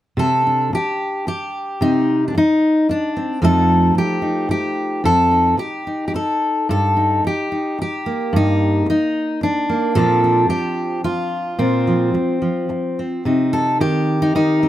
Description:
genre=folk, solo fingerstyle acoustic guitar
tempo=110 BPM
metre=3/4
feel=rubato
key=C dorian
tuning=A4 = 440 Hz
part: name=fingerpicked steel-string acoustic guitar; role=solo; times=0.2-14.7 s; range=F2 to A4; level=-16 LUFS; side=equal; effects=none
room=light reverb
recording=none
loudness=-16 LUFS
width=side -13 dB against mid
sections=0.2-13.3 A section; 13.3-14.7 B section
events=none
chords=0.2 Cmadd9; 3.4 F7; 6.7 Eb/G; 10.0 Bbadd9; 13.3 Cm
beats=| 0.17 0.72 1.27 | 1.81 2.35 2.89 | 3.43 3.97 4.50 | 5.04 5.58 6.14 | 6.70 7.25 7.80 | 8.35 8.89 9.43 | 9.96 10.50 11.04 | 11.59 12.13 12.69 | 13.26 13.81 14.35

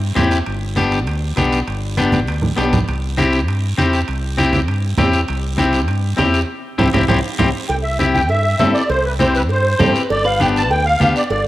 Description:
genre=latin, cumbia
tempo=199 BPM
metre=4/4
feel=straight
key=C major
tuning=A4 = 443 Hz
part: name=fingered electric bass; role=bass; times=0.0-11.5 s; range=G1 to G2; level=-20 LUFS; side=equal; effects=none
part: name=clean electric guitar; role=accompaniment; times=0.2-11.2 s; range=B3 to A4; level=-19 LUFS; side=left 3 dB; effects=spring reverb, cassette tape
part: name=congas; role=percussion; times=0.2-11.2 s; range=none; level=-20 LUFS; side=right 2 dB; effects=none
part: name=guiro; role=percussion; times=0.2-11.5 s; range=none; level=-31 LUFS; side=right 6 dB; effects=none
part: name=timbales and cowbell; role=percussion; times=0.2-11.5 s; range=none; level=-27 LUFS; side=right 5 dB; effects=none
part: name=musette accordion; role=melody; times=7.7-11.4 s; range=B4 to A5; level=-17 LUFS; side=equal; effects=cassette tape
part: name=clean electric guitar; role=second line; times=9.8-10.8 s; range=A4 to B4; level=-24 LUFS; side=left 2 dB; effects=cassette tape
room=light reverb, studio ambience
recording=home recording on cassette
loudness=-14 LUFS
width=side -15 dB against mid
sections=0.0-7.7 A section; 7.7-11.5 B section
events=drum fill 2.1-2.9, 6.5-7.7; band accent 6.5-7.7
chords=0.5 G; 2.9 C; 10.1 G7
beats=0.17 | 0.47 0.77 1.07 1.37 | 1.68 1.98 2.28 2.58 | 2.88 3.18 3.48 3.78 | 4.08 4.38 4.68 4.99 | 5.29 5.59 5.89 6.19 | 6.49 6.79 7.09 7.39 | 7.69 8.00 8.30 8.60 | 8.90 9.20 9.50 9.80 | 10.10 10.40 10.71 11.01 | 11.31

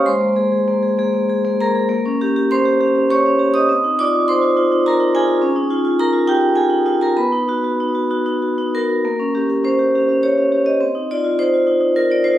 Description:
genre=classical, contemporary piece for solo vibraphone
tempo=95-106 BPM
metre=3/4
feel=rubato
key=Bb dorian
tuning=A4 = 439 Hz
part: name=vibraphone with medium hard mallets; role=solo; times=0.0-12.4 s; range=Ab3 to Eb6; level=-14 LUFS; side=equal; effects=none
room=light reverb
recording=recorded on a phone in the room, studio ambience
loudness=-14 LUFS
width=side -12 dB against mid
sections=0.0-9.0 A section; 9.0-12.4 B section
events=none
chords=0.1 Abadd9; 1.9 Bbm6; 3.7 Cm11; 5.4 Dbadd9; 7.2 B; 9.0 Bbm6; 10.8 Cmadd11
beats=| 0.06 0.67 1.28 | 1.89 2.48 3.08 | 3.67 4.26 4.83 | 5.40 5.97 6.54 | 7.16 7.79 8.42 | 9.04 9.64 10.23 | 10.81 11.38 11.95

